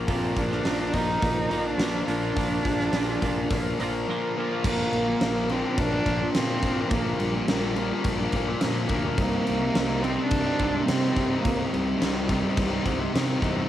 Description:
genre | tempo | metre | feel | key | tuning
quiet-loud alternative rock | 106 BPM | 4/4 | straight | C minor from 4.6 s | A4 = 440 Hz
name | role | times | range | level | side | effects
twelve-string electric guitar | arpeggios | 0.0-4.7 s | Bb2 to F4 | -35 LUFS | right 6 dB | analog delay
thick fuzz guitar | riff | 0.0-13.7 s | Bb2 to Eb4 | -29 LUFS | left 6 dB | distortion
fuzz fingered electric bass | bass | 0.0-13.6 s | Bb1 to C3 | -33 LUFS | equal | overdrive
warm cello | melody | 0.1-13.4 s | G3 to Eb4 | -29 LUFS | right 1 dB | cassette tape
thick fuzz guitar | riff | 0.1-13.7 s | Bb2 to Eb4 | -31 LUFS | right 7 dB | distortion
big rock drum kit | drums | 0.1-13.6 s | crash cymbal, hi-hat, kick drum, snare drum | -29 LUFS | equal | cassette tape
room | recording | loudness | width
light reverb, studio ambience | home recording on cassette | -23 LUFS | side -12 dB against mid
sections
0.0-4.6 A section; 4.6-13.7 B section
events
none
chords
0.0 Bb; 9.2 Cm7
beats
| 0.09 0.66 1.23 1.80 | 2.37 2.94 3.51 4.08 | 4.65 5.22 5.79 6.35 | 6.92 7.49 8.06 8.62 | 9.19 9.75 10.32 10.88 | 11.45 12.01 12.58 13.14

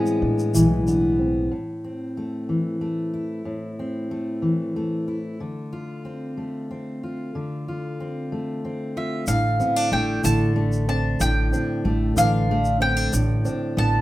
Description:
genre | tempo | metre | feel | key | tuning
acoustic folk duo or small band | 62 BPM (dotted quarters) | 6/8 | straight | unclear | A4 = 440 Hz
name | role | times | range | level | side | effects
mandolin | melody | 0.0-0.8, 9.0-14.0 s | E5 to A5 | -25 LUFS | equal | none
fingerpicked steel-string acoustic guitar | accompaniment | 0.0-14.0 s | A2 to F4 | -24 LUFS | left 1 dB | none
dark upright piano | arpeggios | 0.0-1.5, 9.3-14.0 s | E3 to E4 | -29 LUFS | right 4 dB | none
tube shaker | percussion | 0.1-1.0, 9.3-13.5 s | none | -32 LUFS | left 1 dB | none
upright bass | bass | 0.2-1.5, 9.3-14.0 s | A1 to A2 | -23 LUFS | equal | none
room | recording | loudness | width
wet studio reverb, RT60 0.6 s | rough home demo mix | -21 LUFS | side -16 dB against mid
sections
0.0-1.5 A section; 1.5-9.3 B section; 9.3-14.0 A section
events
none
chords
0.0 E; 1.5 Am; 5.4 Dm7; 9.3 Dm/A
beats
0.54 | 1.51 2.48 | 3.46 4.43 | 5.40 6.37 | 7.34 8.31 | 9.27 10.24 | 11.20 12.17 | 13.13

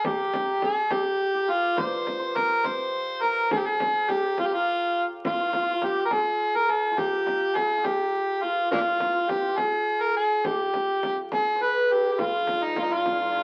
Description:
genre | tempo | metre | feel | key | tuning
Persian modal ensemble | 69 BPM (dotted quarters) | 6/8 | straight | G dastgah shur | A4 = 440 Hz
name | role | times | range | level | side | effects
overdriven harmonica | melody | 0.0-13.4 s | Bb3 to C5 | -26 LUFS | equal | none
santur | second line | 0.0-13.4 s | Eb4 to D5 | -33 LUFS | equal | none
frame drum | percussion | 0.0-13.2 s | none | -37 LUFS | equal | none
tombak | percussion | 5.2-13.2 s | none | -47 LUFS | equal | none
rich cello | drone | 12.2-13.4 s | G2 | -44 LUFS | equal | none
room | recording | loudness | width
wet studio reverb, RT60 0.9 s | very old 78 rpm record, vinyl crackle | -25 LUFS | mono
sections
0.0-12.2 A section; 12.2-13.4 B section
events
none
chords
none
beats
| 0.04 0.91 | 1.78 2.64 | 3.51 4.38 | 5.24 6.11 | 6.98 7.85 | 8.71 9.58 | 10.45 11.32 | 12.19 13.05

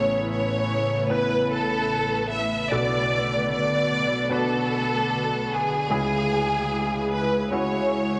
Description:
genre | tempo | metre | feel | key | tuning
pop | 75 BPM | 4/4 | straight | unclear | A4 = 439 Hz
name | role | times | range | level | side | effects
rich studio violin section | melody | 0.0-8.2 s | G#4 to E5 | -27 LUFS | equal | none
warm concert grand piano | accompaniment | 0.0-8.2 s | A1 to B4 | -29 LUFS | equal | none
ethereal airy pad | sustained chords | 0.0-8.2 s | C#3 to B4 | -32 LUFS | equal | ensemble chorus, built-in reverb
room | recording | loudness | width
wet spring reverb, RT60 1.8 s, studio reverb | none | -24 LUFS | mono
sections
0.0-8.2 A section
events
none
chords
0.0 Aadd9; 2.7 Bm7; 5.9 C#m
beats
0.31 1.11 1.91 | 2.71 3.51 4.31 5.11 | 5.91 6.71 7.51

